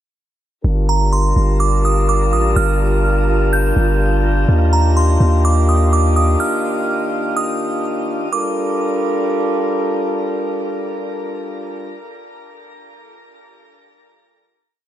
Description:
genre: hip hop.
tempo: 125 BPM.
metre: 4/4.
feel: half-time.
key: G minor.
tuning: A4 = 438 Hz.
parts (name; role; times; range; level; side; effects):
mellow French horn section; sustained chords; 0.6-12.0 s; Eb3 to Bb4; -20 LUFS; equal; none.
long sustained 808-style bass; bass; 0.6-6.4 s; G1 to Eb2; -14 LUFS; equal; none.
wind-like tuned noise texture; texture; 1.3-6.4 s; F4 to A5; -30 LUFS; right 3 dB; built-in reverb.
glassy synth bell; melody; 0.9-9.7 s; Bb5 to G6; -22 LUFS; right 2 dB; chorus, ping-pong delay.
room: light reverb, digital ambience.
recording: none.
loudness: -14 LUFS.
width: side -12 dB against mid.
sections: 0.6-8.3 verse; 8.3-12.2 final chord.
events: none.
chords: 0.6 Gm9; 4.5 Ebmaj9; 8.3 Gm9.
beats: | 0.65 1.12 1.60 2.08 | 2.56 3.04 3.52 4.00 | 4.49 4.96 5.45 5.92 | 6.41 6.88 7.37 7.84 | 8.32 8.80 9.29 9.77 | 10.24 10.72 11.21 11.69.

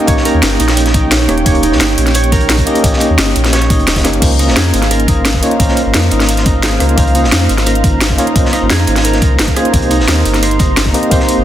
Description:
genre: liquid drum and bass.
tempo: 174 BPM.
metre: 4/4.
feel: straight.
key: unclear.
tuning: A4 = 439 Hz.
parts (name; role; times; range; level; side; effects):
tine electric piano; accompaniment; 0.0-11.4 s; Bb3 to Eb5; -16 LUFS; equal; medium tremolo, digital delay.
warm analog pad; sustained chords; 0.0-11.4 s; Eb4 to Bb5; -21 LUFS; right 1 dB; chorus.
Celtic harp; arpeggios; 0.0-11.4 s; Eb4 to Db5; -19 LUFS; right 2 dB; dub echo.
drum and bass drum kit; drums; 0.0-11.4 s; crash cymbal, hi-hat, rim click, snare drum; -16 LUFS; equal; overdrive.
crunchy breakbeat drum kit; drums; 0.1-11.4 s; hi-hat, snare drum; -21 LUFS; equal; high-pass filter on hats, high-pass filter on snare, high-pass filter on room.
electronic kick drum; drums; 0.1-11.2 s; none; -14 LUFS; equal; none.
sub bass with octave; bass; 0.3-11.4 s; Eb1 to F2; -14 LUFS; equal; none.
room: light reverb, studio ambience.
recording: dense, heavily limited modern master.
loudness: -9 LUFS.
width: side -12 dB against mid.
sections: 0.0-11.4 A section.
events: none.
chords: 0.0 Eb7; 4.2 Dbmaj13; 9.7 Cm7.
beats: | 0.08 0.43 0.77 1.11 | 1.46 1.80 2.15 2.50 | 2.84 3.18 3.53 3.87 | 4.22 4.56 4.91 5.25 | 5.60 5.94 6.29 6.63 | 6.98 7.32 7.67 8.01 | 8.36 8.70 9.05 9.39 | 9.74 10.08 10.43 10.77 | 11.12.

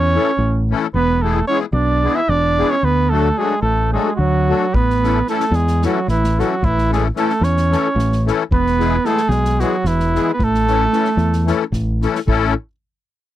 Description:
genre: balkan folk, Balkan wedding band.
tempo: 222 BPM (eighths).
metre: 7/8.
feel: straight.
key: A major.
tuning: A4 = 441 Hz.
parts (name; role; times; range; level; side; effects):
warm flugelhorn; melody; 0.0-11.8 s; E4 to E5; -19 LUFS; equal; none.
warm clarinet; second line; 0.0-11.7 s; E3 to E4; -22 LUFS; right 8 dB; none.
fingered electric bass; bass; 0.0-12.5 s; E1 to E2; -18 LUFS; equal; none.
musette accordion; accompaniment; 0.1-12.5 s; E3 to A4; -20 LUFS; left 9 dB; none.
unplugged drum kit; percussion; 4.7-12.5 s; kick drum, snare drum; -24 LUFS; equal; none.
room: little or no reverb.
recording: dry, close 1970s-style studio recording.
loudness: -15 LUFS.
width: side -13 dB against mid.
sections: 0.0-12.3 A section; 12.3-13.4 B section.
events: none.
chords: 0.0 A; 0.9 E; 2.8 D; 4.7 A; 8.5 E; 10.4 A.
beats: 0.13 0.40 0.68 | 0.95 1.22 1.49 1.76 2.03 2.30 2.58 | 2.85 3.12 3.39 3.66 3.93 4.20 4.47 | 4.74 5.01 5.29 5.55 5.83 6.10 6.37 | 6.64 6.91 7.18 7.45 7.71 7.99 8.25 | 8.52 8.79 9.06 9.33 9.60 9.87 10.14 | 10.40 10.67 10.94 11.21 11.48 11.75 12.02 | 12.28.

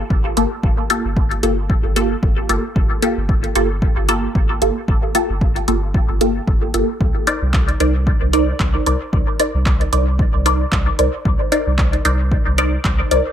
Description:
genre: dub techno.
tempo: 113 BPM.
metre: 4/4.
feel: swing 56% on 16ths.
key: G minor.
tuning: A4 = 440 Hz.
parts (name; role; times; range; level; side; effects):
filtered dub chord stab; stabs; 0.0-13.2 s; Bb3 to D5; -19 LUFS; equal; phaser, sidechain pumping, dub echo.
soft dub sub bass; bass; 0.0-13.2 s; G1 to C2; -20 LUFS; equal; sidechain pumping.
electronic kick drum; drums; 0.1-13.0 s; none; -18 LUFS; equal; none.
deep house drum kit; drums; 0.4-13.2 s; handclaps, hi-hat; -25 LUFS; equal; overdrive, dub echo.
room: light reverb, digital ambience.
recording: none.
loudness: -15 LUFS.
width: side -10 dB against mid.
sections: 0.0-13.3 A section.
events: none.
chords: 0.0 Gm9; 7.0 Cm9.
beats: 0.10 | 0.64 1.17 1.70 2.23 | 2.76 3.29 3.82 4.35 | 4.88 5.41 5.94 6.47 | 7.01 7.54 8.07 8.60 | 9.13 9.66 10.19 10.72 | 11.25 11.79 12.32 12.85.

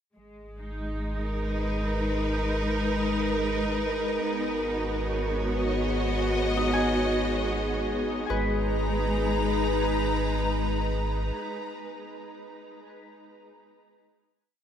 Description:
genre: ambient.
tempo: 59 BPM.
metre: 4/4.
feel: straight.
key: G# minor.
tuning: A4 = 440 Hz.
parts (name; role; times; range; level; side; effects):
clear symphonic string section; sustained chords; 0.1-11.9 s; G#3 to A#5; -28 LUFS; equal; none.
bowed-like drone; drone; 2.8-11.4 s; G#3 to G#4; -35 LUFS; equal; built-in reverb.
warm sub bass; bass; 0.2-11.3 s; G#1; -31 LUFS; equal; none.
Celtic harp; arpeggios; 6.6-11.4 s; D#4 to G#5; -35 LUFS; left 2 dB; ping-pong delay.
room: wet huge ambient reverb, RT60 7.7 s.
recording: none.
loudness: -25 LUFS.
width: side -8 dB against mid.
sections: 0.2-8.3 A section; 8.3-12.4 final chord.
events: fade-in on synth drone 0.2-8.3.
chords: 0.2 G#m; 4.2 B/G#; 8.3 G#m.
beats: | 0.17 1.19 2.20 3.22 | 4.24 5.25 6.27 7.29 | 8.30 9.32 10.34 11.36.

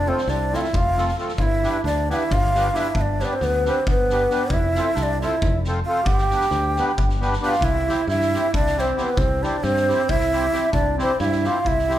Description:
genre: balkan folk, Balkan wedding band.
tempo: 270 BPM (eighths).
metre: 7/8.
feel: straight.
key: unclear.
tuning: A4 = 440 Hz.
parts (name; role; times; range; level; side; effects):
breathy low ney; melody; 0.0-12.0 s; B4 to G5; -23 LUFS; equal; none.
warm clarinet; second line; 0.0-12.0 s; B3 to G4; -27 LUFS; right 5 dB; none.
fingered electric bass; bass; 0.0-12.0 s; F1 to G2; -25 LUFS; equal; none.
accordion; accompaniment; 0.1-12.0 s; A3 to C5; -28 LUFS; left 1 dB; light tremolo tuning.
loose indie drum kit; percussion; 0.2-11.9 s; kick drum, snare drum; -27 LUFS; equal; none.
room: moderate recital hall reverb, RT60 1.4 s.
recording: recorded in a church or concert hall.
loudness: -18 LUFS.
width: side -12 dB against mid.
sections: 0.0-7.6 A section; 7.6-12.0 B section.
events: none.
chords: 0.0 F; 1.4 G; 4.5 F; 6.1 G; 7.6 C.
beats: 0.05 0.27 0.49 0.72 0.94 1.16 | 1.38 1.61 1.83 2.05 2.27 2.50 2.72 | 2.94 3.17 3.39 3.61 3.83 4.05 4.28 | 4.50 4.72 4.95 5.17 5.39 5.61 5.84 | 6.06 6.28 6.50 6.73 6.95 7.17 7.39 | 7.62 7.84 8.06 8.29 8.51 8.73 8.95 | 9.18 9.40 9.62 9.84 10.07 10.29 10.51 | 10.73 10.96 11.18 11.40 11.62 11.85.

